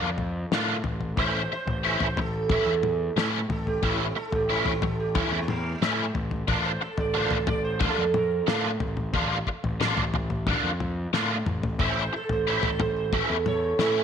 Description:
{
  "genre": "psychedelic rock",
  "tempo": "90 BPM",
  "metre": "4/4",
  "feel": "straight",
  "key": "unclear",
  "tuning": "A4 = 440 Hz",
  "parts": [
    { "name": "sitar", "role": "melody", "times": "0.0-14.0 s", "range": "A3 to D5", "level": "-28 LUFS", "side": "right 4 dB", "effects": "slapback echo" },
    { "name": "biting overdriven guitar", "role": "riff", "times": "0.0-14.0 s", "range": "D3 to F4", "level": "-28 LUFS", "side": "equal", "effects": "rotary speaker" },
    { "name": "fuzz picked electric bass", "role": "bass", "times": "0.0-14.0 s", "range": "A1 to A2", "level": "-30 LUFS", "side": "equal", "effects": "overdrive" },
    { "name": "damped 70s drum kit", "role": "drums", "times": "0.2-13.9 s", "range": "kick drum, snare drum, toms", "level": "-30 LUFS", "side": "left 3 dB", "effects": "none" }
  ],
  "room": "moderate echo chamber reverb, RT60 1.8 s, small room reverb",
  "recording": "1960s-style stereo",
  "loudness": "-24 LUFS",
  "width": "side -8 dB against mid",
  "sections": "0.0-14.0 A section",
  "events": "sitar solo 0.0-14.0; drum fill 11.1-11.8",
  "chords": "0.0 Bb; 1.2 A; 6.5 Bb/A; 11.8 A",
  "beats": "0.52 | 1.18 1.85 2.51 3.17 | 3.83 4.50 5.16 5.82 | 6.49 7.15 7.81 8.48 | 9.14 9.81 10.47 11.14 | 11.80 12.47 13.13 13.79"
}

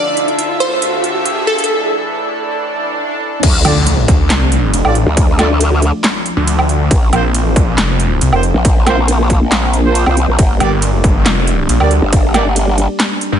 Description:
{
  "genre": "heavy wobble dubstep",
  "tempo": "138 BPM",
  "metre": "4/4",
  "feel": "half-time",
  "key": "D minor",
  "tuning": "A4 = 440 Hz",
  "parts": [
    { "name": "wide unison pluck", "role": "melody", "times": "0.0-1.7 s", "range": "A4 to D5", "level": "-17 LUFS", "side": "equal", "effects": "ping-pong delay" },
    { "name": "lush unison pad", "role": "sustained chords", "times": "0.0-13.4 s", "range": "D2 to E5", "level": "-20 LUFS", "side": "equal", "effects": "chorus, sidechain pumping" },
    { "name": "riser, swell and impact", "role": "sound effects", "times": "0.0-5.2 s", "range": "none", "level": "-22 LUFS", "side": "right 1 dB", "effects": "none" },
    { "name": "big-room dance drum kit", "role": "drums", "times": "0.2-13.3 s", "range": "crash cymbal, handclaps, hi-hat, ride cymbal, snare drum, woodblock", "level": "-17 LUFS", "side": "right 1 dB", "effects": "overdrive" },
    { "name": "growl bass", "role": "bass", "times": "3.4-12.9 s", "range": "G1 to D2", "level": "-13 LUFS", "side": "equal", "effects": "chorus, overdrive" },
    { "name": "electronic kick drum", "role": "drums", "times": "3.4-12.2 s", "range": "none", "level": "-12 LUFS", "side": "equal", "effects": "distortion" },
    { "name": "warm brass ensemble", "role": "stabs", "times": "3.6-12.4 s", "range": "F4 to D5", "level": "-21 LUFS", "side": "right 4 dB", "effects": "vintage 12-bit sampler grit, ping-pong delay" },
    { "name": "snarling distorted saw bass", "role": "bass", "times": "3.6-13.4 s", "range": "F1 to G2", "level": "-13 LUFS", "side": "equal", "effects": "distortion, overdrive" }
  ],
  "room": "light reverb",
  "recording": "high-pass filter, nothing above 10.9 kHz",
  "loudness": "-11 LUFS",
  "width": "side -9 dB against mid",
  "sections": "0.0-3.4 A section; 3.4-13.4 B section",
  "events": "build-up 0.0-3.4; riser 0.0-1.7; break 1.7-3.4; swell 2.6-3.4; drop 3.4-13.4; impact 3.4-5.2",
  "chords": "0.0 Dmadd9; 1.7 Asus4; 3.4 Dm; 6.9 Bbsus2; 10.4 Gm",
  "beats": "0.39 0.82 1.26 | 1.69 2.13 2.56 3.00 | 3.43 3.87 4.30 4.74 | 5.17 5.60 6.04 6.47 | 6.91 7.34 7.78 8.21 | 8.65 9.08 9.52 9.95 | 10.39 10.82 11.26 11.69 | 12.13 12.56 13.00"
}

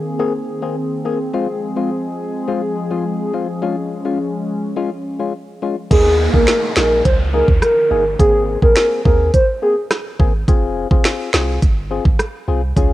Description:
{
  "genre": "dancehall",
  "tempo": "105 BPM",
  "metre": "4/4",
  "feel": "straight",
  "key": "F minor",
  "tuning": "A4 = 441 Hz",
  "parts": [
    { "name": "hollow soft pad", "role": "sustained chords", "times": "0.0-5.9 s", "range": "Eb3 to Ab4", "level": "-22 LUFS", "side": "left 1 dB", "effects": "chorus, sidechain pumping, cassette tape" },
    { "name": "percussive organ stab", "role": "accompaniment", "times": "0.2-12.9 s", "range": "Ab3 to Ab4", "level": "-22 LUFS", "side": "left 6 dB", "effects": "chorus, cassette tape" },
    { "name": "hollow clarinet-like synth lead", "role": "melody", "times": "5.9-9.7 s", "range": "Ab4 to C5", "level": "-15 LUFS", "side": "right 1 dB", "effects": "chorus" },
    { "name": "punchy sub bass", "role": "bass", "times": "5.9-12.9 s", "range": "F1 to Eb2", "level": "-20 LUFS", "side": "right 1 dB", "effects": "none" },
    { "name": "island pop drum kit", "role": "drums", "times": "5.9-12.9 s", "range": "crash cymbal, finger snaps, hi-hat, kick drum, rim click, snare drum", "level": "-15 LUFS", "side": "right 1 dB", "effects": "vintage 12-bit sampler grit, cassette tape" },
    { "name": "downlifter", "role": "sound effects", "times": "5.9-10.5 s", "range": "none", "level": "-26 LUFS", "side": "right 4 dB", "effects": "none" }
  ],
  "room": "little or no reverb",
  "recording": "home recording on cassette",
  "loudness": "-14 LUFS",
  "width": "side -15 dB against mid",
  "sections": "0.0-5.9 A section; 5.9-12.9 B section",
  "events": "none",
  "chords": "0.0 Abadd9; 1.3 Fm; 3.6 Db; 5.9 Ebsus4; 8.2 Abadd9; 10.5 Fm",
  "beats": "0.20 0.77 | 1.34 1.91 2.48 3.05 | 3.62 4.20 4.77 5.34 | 5.91 6.48 7.05 7.62 | 8.20 8.77 9.34 9.91 | 10.48 11.05 11.62 12.20 | 12.77"
}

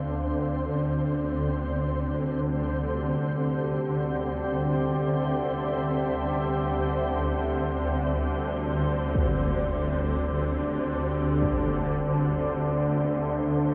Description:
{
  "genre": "dark ambient drone",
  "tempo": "free time",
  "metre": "none",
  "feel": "none",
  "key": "unclear",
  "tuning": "A4 = 440 Hz",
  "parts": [
    { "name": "deep dark ambient pad", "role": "sustained chords", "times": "0.0-13.7 s", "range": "C4 to F5", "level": "-33 LUFS", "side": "equal", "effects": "chorus, built-in reverb" },
    { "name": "swarming drone", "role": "drone", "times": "0.0-13.7 s", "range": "D2 to D3", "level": "-30 LUFS", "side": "equal", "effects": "built-in reverb" },
    { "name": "flickering grainy texture", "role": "texture", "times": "0.0-13.7 s", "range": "C4 to C5", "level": "-36 LUFS", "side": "equal", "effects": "built-in reverb" },
    { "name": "impact", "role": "percussion", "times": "9.2-11.7 s", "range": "none", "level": "-35 LUFS", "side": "equal", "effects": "low-pass filter on sfx" }
  ],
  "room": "wet huge ambient reverb, RT60 7.6 s",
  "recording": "worn, warbling old tape, cassette tape, warbly pitch drift",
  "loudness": "-27 LUFS",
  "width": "mono",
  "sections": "0.0-13.7 A section",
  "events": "none",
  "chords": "0.1 C; 9.2 Dm",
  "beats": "free time"
}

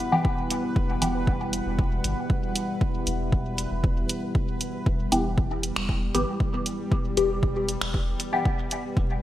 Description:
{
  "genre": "dub techno",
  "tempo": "117 BPM",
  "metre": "4/4",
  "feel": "straight",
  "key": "E minor",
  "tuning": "A4 = 442 Hz",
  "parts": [
    { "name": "deep dark ambient pad", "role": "sustained chords", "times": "0.0-9.2 s", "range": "G3 to F#5", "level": "-32 LUFS", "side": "equal", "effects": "chorus, built-in reverb, sidechain pumping" },
    { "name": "bubbling stepped-filter texture", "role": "texture", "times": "0.0-9.2 s", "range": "G3 to B4", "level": "-37 LUFS", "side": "equal", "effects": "chorus, built-in reverb, sidechain pumping" },
    { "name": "filtered dub chord stab", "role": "stabs", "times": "0.1-1.2, 5.1-8.5 s", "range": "E3 to G4", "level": "-27 LUFS", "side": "left 2 dB", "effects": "phaser, sidechain pumping, dub echo" },
    { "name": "electronic kick drum", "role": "drums", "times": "0.2-9.1 s", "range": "none", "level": "-26 LUFS", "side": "equal", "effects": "none" },
    { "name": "punchy analog drum machine", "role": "drums", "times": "0.5-8.8 s", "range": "finger snaps, hi-hat", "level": "-30 LUFS", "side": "right 1 dB", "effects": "gated reverb" },
    { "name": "soft dub sub bass", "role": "bass", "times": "0.8-9.2 s", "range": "E1 to G1", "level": "-31 LUFS", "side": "equal", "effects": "sidechain pumping" }
  ],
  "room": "moderate lush hall reverb, RT60 1.8 s, digital ambience",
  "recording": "bright 1980s-style digital production, vinyl crackle",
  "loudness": "-23 LUFS",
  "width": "side -13 dB against mid",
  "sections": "0.0-9.2 A section",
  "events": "none",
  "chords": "0.0 Em",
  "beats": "0.25 | 0.76 1.27 1.79 2.30 | 2.81 3.33 3.84 4.35 | 4.86 5.38 5.89 6.40 | 6.92 7.43 7.94 8.45 | 8.97"
}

